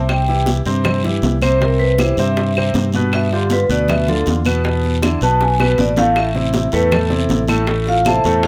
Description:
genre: Afro-Cuban jazz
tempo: 158 BPM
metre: 4/4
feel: straight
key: unclear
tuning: A4 = 442 Hz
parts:
  - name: vibraphone with medium mallets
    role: melody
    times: 0.0-8.5 s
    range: F4 to A5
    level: -20 LUFS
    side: equal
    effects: none
  - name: warm concert grand piano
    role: accompaniment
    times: 0.0-8.5 s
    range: A2 to C5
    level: -22 LUFS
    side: equal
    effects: none
  - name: fingered electric bass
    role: bass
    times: 0.0-8.5 s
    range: A1 to G2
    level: -21 LUFS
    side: equal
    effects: none
  - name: bongos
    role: percussion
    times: 0.1-8.5 s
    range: none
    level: -28 LUFS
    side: equal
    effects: none
  - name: claves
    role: percussion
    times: 0.1-8.2 s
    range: none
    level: -30 LUFS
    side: equal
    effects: none
  - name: congas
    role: percussion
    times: 0.1-8.5 s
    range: none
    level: -26 LUFS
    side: equal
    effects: none
  - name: guiro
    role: percussion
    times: 0.1-8.5 s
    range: none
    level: -34 LUFS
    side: equal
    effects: none
room: little or no reverb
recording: close, detailed microphones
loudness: -16 LUFS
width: mono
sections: 0.0-8.5 A section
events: vibraphone solo 0.0-8.5; drum fill 5.4-6.2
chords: 0.1 C; 3.1 G6; 4.6 E5; 6.2 Am

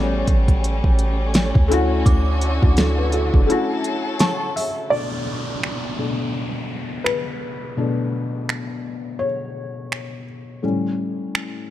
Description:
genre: contemporary R&B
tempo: 84 BPM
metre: 4/4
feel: swing 58% on 16ths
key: B minor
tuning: A4 = 436 Hz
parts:
  - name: felt-muted upright piano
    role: accompaniment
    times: 0.0-11.7 s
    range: A2 to A5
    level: -24 LUFS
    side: left 2 dB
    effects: none
  - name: warm studio string section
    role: sustained chords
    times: 0.0-4.9 s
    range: D3 to A4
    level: -26 LUFS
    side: equal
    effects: sidechain pumping
  - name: warm 808-style bass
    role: bass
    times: 0.0-3.5 s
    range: F#1 to D2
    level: -20 LUFS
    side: equal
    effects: none
  - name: smooth R&B drum kit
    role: drums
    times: 0.3-11.5 s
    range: finger snaps, hi-hat, kick drum, snare drum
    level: -19 LUFS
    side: equal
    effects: none
  - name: synth chime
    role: texture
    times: 2.1-5.2 s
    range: C#6 to D6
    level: -35 LUFS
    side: right 4 dB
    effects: ensemble chorus, tape echo
  - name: downlifter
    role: sound effects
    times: 4.9-10.6 s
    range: none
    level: -33 LUFS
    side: right 2 dB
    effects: none
room: little or no reverb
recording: dark, warm production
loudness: -18 LUFS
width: side -13 dB against mid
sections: 0.0-4.9 A section; 4.9-11.7 B section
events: break 3.5-4.9; felt piano fill 3.8-4.9; felt piano solo 4.9-11.7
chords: 0.0 A13; 1.7 F#m7; 4.9 Bm9; 10.6 A7

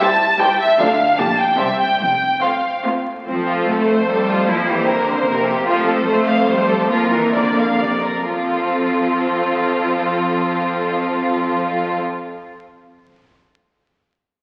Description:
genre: quick classical-period movement for string orchestra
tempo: 120-155 BPM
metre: 3/4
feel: rubato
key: F major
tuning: A4 = 440 Hz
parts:
  - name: rich symphonic violin section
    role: melody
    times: 0.0-12.0 s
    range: A4 to A5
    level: -22 LUFS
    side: equal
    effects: none
  - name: clear symphonic violin section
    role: second line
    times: 0.0-12.0 s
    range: C4 to F5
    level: -23 LUFS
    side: equal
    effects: none
  - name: rich symphonic viola section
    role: accompaniment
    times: 0.0-12.0 s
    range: D3 to E4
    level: -26 LUFS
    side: equal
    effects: none
  - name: clear symphonic cello section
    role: bass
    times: 0.8-12.0 s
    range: F2 to A3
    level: -26 LUFS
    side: equal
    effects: none
  - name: clear symphonic double bass section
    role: bass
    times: 0.8-12.0 s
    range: F1 to F2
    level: -29 LUFS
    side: equal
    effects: none
room: wet scoring stage reverb, RT60 1.9 s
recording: very old 78 rpm record, vinyl crackle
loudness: -18 LUFS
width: mono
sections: 0.0-3.3 A section; 3.3-8.3 B section; 8.3-11.2 C section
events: slowing down 5.1-8.3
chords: 0.0 C; 0.8 Dm; 1.2 Gm/Bb; 1.6 C; 2.0 F; 4.5 C7/F; 5.7 F; 6.9 Bb/F; 8.3 F

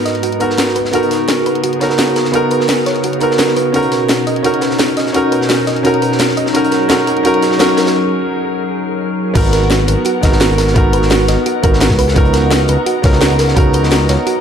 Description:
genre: liquid drum and bass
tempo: 171 BPM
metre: 4/4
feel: straight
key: G# minor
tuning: A4 = 439 Hz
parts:
  - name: warm concert grand piano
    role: accompaniment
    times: 0.0-14.4 s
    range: B3 to A#4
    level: -15 LUFS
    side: right 1 dB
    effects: ping-pong delay
  - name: glassy FM pad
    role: sustained chords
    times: 0.0-14.4 s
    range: G#2 to A#5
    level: -20 LUFS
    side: left 1 dB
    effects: ensemble chorus, built-in reverb, sidechain pumping
  - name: thumb-piano-like synth pluck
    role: arpeggios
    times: 0.1-14.4 s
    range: F#4 to D#5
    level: -20 LUFS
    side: right 3 dB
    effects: chorus, dub echo
  - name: crunchy breakbeat drum kit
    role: drums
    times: 0.1-14.4 s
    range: hi-hat, snare drum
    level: -24 LUFS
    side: equal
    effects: high-pass filter on hats, high-pass filter on snare, high-pass filter on room
  - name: garage drum kit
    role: drums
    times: 0.1-14.3 s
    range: crash cymbal, hi-hat, snare drum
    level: -19 LUFS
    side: left 1 dB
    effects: none
  - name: smooth gliding synth bass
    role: bass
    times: 9.4-14.2 s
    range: G#1 to C#2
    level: -15 LUFS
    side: equal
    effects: none
  - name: electronic kick drum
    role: drums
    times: 9.4-13.6 s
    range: none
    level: -13 LUFS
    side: equal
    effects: none
room: moderate lush hall reverb, RT60 1.7 s, small room ambience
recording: dark, warm production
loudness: -11 LUFS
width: side -7 dB against mid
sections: 0.0-9.4 A section; 9.4-14.4 B section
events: build-up 0.0-9.4; break 8.0-9.4; drop 9.4-14.4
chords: 0.0 G#m9; 0.8 C#13sus4; 3.7 Bmaj7; 6.4 F#6; 9.4 G#m9; 12.0 C#13sus4

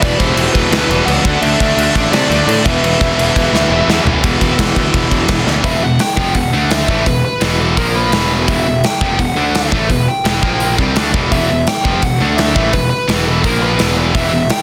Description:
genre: heavy metal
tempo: 169 BPM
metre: 4/4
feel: straight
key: E minor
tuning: A4 = 440 Hz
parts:
  - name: dark smooth lead guitar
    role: melody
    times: 0.0-14.6 s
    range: A4 to G5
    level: -21 LUFS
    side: equal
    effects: overdrive, digital delay
  - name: lead guitar through a small cranked amp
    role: second line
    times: 0.0-4.0 s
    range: G4 to D5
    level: -28 LUFS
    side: equal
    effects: none
  - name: high-gain distorted guitar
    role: riff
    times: 0.0-14.5 s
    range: E2 to D4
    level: -22 LUFS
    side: equal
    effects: distortion
  - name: high-gain distorted guitar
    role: riff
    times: 0.0-14.5 s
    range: E2 to D4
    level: -20 LUFS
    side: equal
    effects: distortion
  - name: fuzz picked electric bass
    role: bass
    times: 0.0-14.5 s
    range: E1 to C3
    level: -21 LUFS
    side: equal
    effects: overdrive
  - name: big rock drum kit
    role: drums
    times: 0.0-14.6 s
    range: crash cymbal, hi-hat, kick drum, snare drum, toms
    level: -19 LUFS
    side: equal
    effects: none
room: light reverb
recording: dense, heavily limited modern master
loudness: -14 LUFS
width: mono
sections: 0.0-4.2 A section; 4.2-5.6 B section; 5.6-14.6 C section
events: half time 0.0-4.2; drum fill 3.5-4.2, 5.5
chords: 0.0 Em; 1.3 D5; 2.7 E5; 5.6 Em; 6.5 D5; 6.9 E5; 7.8 A#5; 8.1 Em; 9.4 D5; 9.7 Em; 10.4 A#5; 10.8 Em; 12.2 D5; 12.6 E5; 13.4 A#5; 13.8 E5

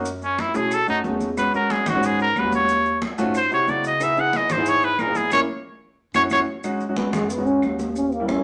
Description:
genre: Afro-Cuban jazz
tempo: 182 BPM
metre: 4/4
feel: straight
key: unclear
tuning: A4 = 440 Hz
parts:
  - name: warm grand piano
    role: accompaniment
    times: 0.0-8.4 s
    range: G3 to G#4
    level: -28 LUFS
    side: equal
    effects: none
  - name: mellow bass clarinet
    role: bass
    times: 0.0-8.4 s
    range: D#2 to C#3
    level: -33 LUFS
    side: equal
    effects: none
  - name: congas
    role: percussion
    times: 0.1-8.4 s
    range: none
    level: -34 LUFS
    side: equal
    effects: none
  - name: maracas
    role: percussion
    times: 0.1-8.4 s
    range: none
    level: -45 LUFS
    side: equal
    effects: none
  - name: bright trumpet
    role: melody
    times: 0.2-6.4 s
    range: C#4 to F#5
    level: -22 LUFS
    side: equal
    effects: none
  - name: claves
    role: percussion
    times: 0.4-8.4 s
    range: none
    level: -39 LUFS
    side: equal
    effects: none
  - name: growling trombone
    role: second line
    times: 7.0-8.4 s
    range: G#3 to C#4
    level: -25 LUFS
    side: equal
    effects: none
room: wet studio reverb, RT60 0.8 s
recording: none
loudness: -21 LUFS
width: mono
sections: 0.0-6.6 A section; 6.6-8.4 A section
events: trumpet solo 0.0-6.6; band accent 5.3-6.6; trombone solo 6.6-8.4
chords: 0.1 F#m7; 0.7 B7; 1.4 E6; 2.7 D#m7b5; 3.3 G#7b13; 4.0 C#m7; 5.3 A#dim; 6.0 F#5; 6.6 B69

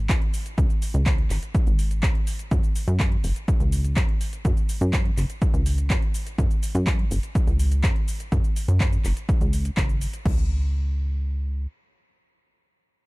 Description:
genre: progressive house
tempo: 124 BPM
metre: 4/4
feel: straight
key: unclear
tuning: A4 = 441 Hz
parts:
  - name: plucky analog bass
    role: bass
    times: 0.0-11.7 s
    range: F#1 to F#2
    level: -23 LUFS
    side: equal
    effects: tube saturation, sidechain pumping
  - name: electronic kick drum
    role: drums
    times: 0.1-10.4 s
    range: none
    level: -22 LUFS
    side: equal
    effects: overdrive
  - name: pop drum kit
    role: drums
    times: 0.1-10.4 s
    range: crash cymbal, handclaps, hi-hat, shaker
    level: -33 LUFS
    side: equal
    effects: overdrive, sidechain pumping on hats, sidechain pumping on perc, sidechain pumping on cymbals
room: little or no reverb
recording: dark, warm production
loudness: -21 LUFS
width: side -23 dB against mid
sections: 0.0-10.3 A section; 10.3-13.1 B section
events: drop 0.0-10.3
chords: none

